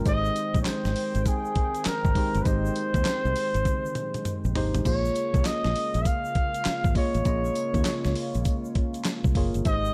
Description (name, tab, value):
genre	R&B, new jack swing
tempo	100 BPM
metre	4/4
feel	swing 63% on 16ths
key	unclear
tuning	A4 = 440 Hz
part	tine electric piano	accompaniment	0.0-9.9 s	Ab3 to Eb5	-35 LUFS	equal	none
part	brassy analog pad	sustained chords	0.0-9.9 s	Db3 to G5	-38 LUFS	equal	chorus
part	fingered electric bass	bass	0.0-9.9 s	Gb1 to Eb2	-30 LUFS	equal	none
part	trumpet with bucket mute	melody	0.1-9.9 s	Ab4 to F5	-32 LUFS	equal	none
part	dusty soul sampler-style drum kit	drums	0.1-9.8 s	crash cymbal, handclaps, hi-hat, kick drum, snare drum, tambourine, toms	-29 LUFS	equal	none
part	egg shaker	percussion	0.1-9.9 s	none	-51 LUFS	equal	none
room	little or no reverb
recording	none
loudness	-26 LUFS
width	mono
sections	0.0-9.9 A section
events	drum fill 3.7-4.9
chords	0.1 Abmaj7; 4.9 Bbm7